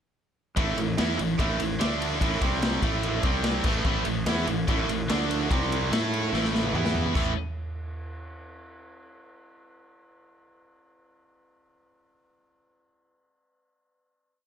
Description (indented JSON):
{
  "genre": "hard rock",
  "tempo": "146 BPM",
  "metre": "4/4",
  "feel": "straight",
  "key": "unclear",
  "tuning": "A4 = 441 Hz",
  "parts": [
    { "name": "high-gain distorted guitar", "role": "riff", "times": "0.6-7.3 s", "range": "A2 to A4", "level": "-30 LUFS", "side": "left 14 dB", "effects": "distortion" },
    { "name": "overdriven electric guitar", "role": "riff", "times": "0.6-7.3 s", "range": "A2 to A4", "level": "-29 LUFS", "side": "right 12 dB", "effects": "none" },
    { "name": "fuzz fingered electric bass", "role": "bass", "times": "0.6-7.3 s", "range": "A1 to A2", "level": "-31 LUFS", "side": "left 1 dB", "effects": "overdrive" },
    { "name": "raw garage drum kit", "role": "drums", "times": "0.6-7.3 s", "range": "crash cymbal, kick drum, ride cymbal, snare drum, toms", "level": "-28 LUFS", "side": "left 1 dB", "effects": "none" }
  ],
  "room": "small room ambience",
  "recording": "none",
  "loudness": "-24 LUFS",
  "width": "side -8 dB against mid",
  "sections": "0.6-7.2 riff; 7.2-8.8 final chord",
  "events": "drum fill 6.3-7.2",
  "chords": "0.6 A5; 1.8 D5; 2.2 A5; 2.4 C5; 2.8 A5; 3.2 C5; 3.7 A5; 5.1 D5; 5.5 C5; 5.9 A5; 6.7 E5; 7.2 A5"
}